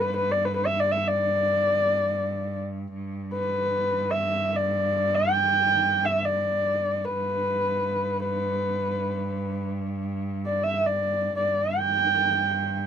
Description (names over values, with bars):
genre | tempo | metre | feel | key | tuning
mongolian traditional, Mongolian folk | free time | none | none | G gong mode | A4 = 441 Hz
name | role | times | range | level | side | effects
dark horsehead fiddle | melody | 0.0-12.8 s | B4 to G5 | -23 LUFS | equal | none
clear cello | drone | 0.0-12.9 s | G2 | -30 LUFS | right 1 dB | stereo widening
room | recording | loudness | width
moderate booth ambience, RT60 0.2 s | dry, close 1970s-style studio recording | -23 LUFS | side -8 dB against mid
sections
0.0-12.9 A section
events
none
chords
none